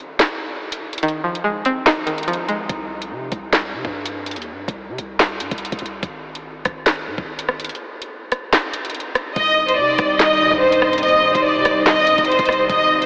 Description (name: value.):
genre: hip hop, drill.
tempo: 144 BPM.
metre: 4/4.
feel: half-time.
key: C minor.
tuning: A4 = 440 Hz.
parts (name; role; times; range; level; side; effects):
drill drum kit; drums; 0.2-13.1 s; handclaps, hi-hat, kick drum, rim click, snare drum; -21 LUFS; equal; none.
string-like resonator pluck; accompaniment; 1.0-2.7 s; Eb3 to Eb4; -23 LUFS; equal; chorus.
long sustained 808-style bass; bass; 2.7-13.1 s; Ab1 to C3; -32 LUFS; equal; none.
rich studio violin section; melody; 9.4-13.1 s; C5 to Eb5; -14 LUFS; equal; none.
airy breathy pad; sustained chords; 9.4-13.1 s; C3 to Eb4; -23 LUFS; equal; chorus.
room: wet huge ambient reverb, RT60 8.9 s.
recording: dreamy mix soaked in reverb, AM radio sound.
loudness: -16 LUFS.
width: side -31 dB against mid.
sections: 0.0-9.4 A section; 9.4-13.1 B section.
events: break 0.0-2.7, 2.7-9.4; kick muted 7.7-9.4.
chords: 0.0 Ab6; 2.7 C5; 6.0 N.C.; 9.4 Cm.